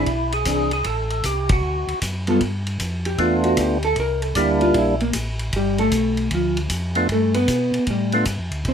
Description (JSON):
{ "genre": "soul jazz organ trio", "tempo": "154 BPM", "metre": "4/4", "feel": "swing 66% on 8ths", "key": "G mixolydian", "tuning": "A4 = 442 Hz", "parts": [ { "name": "percussive tonewheel organ", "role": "melody", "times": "0.0-8.3 s", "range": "G3 to A4", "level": "-20 LUFS", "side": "right 1 dB", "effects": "slow rotary speaker, overdrive" }, { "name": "vintage hollow-body jazz guitar", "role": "accompaniment", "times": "0.0-8.7 s", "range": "E3 to C5", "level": "-21 LUFS", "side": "equal", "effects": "none" }, { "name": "mellow tonewheel organ", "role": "bass", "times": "0.0-8.7 s", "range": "G1 to B2", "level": "-25 LUFS", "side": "equal", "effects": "slow rotary speaker" }, { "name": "vintage drum kit", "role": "drums", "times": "0.1-8.7 s", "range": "hi-hat, kick drum, ride cymbal", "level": "-27 LUFS", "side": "equal", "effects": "none" } ], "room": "light reverb", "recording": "close, detailed microphones", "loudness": "-18 LUFS", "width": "side -8 dB against mid", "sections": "0.0-2.4 A section; 2.4-8.7 B section", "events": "band accent 1.4; hollow-body jazz guitar solo 2.4-8.7", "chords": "0.1 E7b13; 0.8 Am; 1.6 D6; 2.4 G9; 4.0 C9; 5.5 G9" }